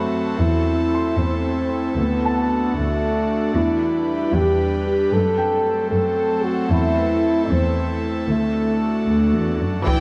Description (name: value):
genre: cinematic, hybrid orchestral and electronic film score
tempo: 76 BPM (dotted quarters)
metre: 6/8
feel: straight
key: unclear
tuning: A4 = 440 Hz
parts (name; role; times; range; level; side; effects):
- airy breathy pad; sustained chords; 0.0-10.0 s; F#3 to B4; -27 LUFS; equal; chorus
- mellow French horn section; sustained chords; 0.0-9.6 s; A3 to A4; -23 LUFS; equal; none
- dark symphonic cello section; bass; 0.0-10.0 s; D2 to E4; -25 LUFS; equal; none
- warm concert grand piano; texture; 0.0-9.9 s; A4 to D6; -34 LUFS; equal; digital delay
- warm symphonic violin section; second line; 9.9-10.0 s; D5 to G5; -27 LUFS; equal; none
- warm studio viola section; accompaniment; 9.9-10.0 s; E3; -25 LUFS; equal; none
- taiko ensemble; drums; 9.9-10.0 s; none; -21 LUFS; equal; none
room: moderate scoring stage reverb, RT60 1.8 s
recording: dark, warm production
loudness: -20 LUFS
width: mono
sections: 0.0-9.9 A section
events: none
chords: 0.4 Am/E; 2.0 D; 3.6 Em7; 5.1 F#dim; 6.7 Am/E; 8.3 D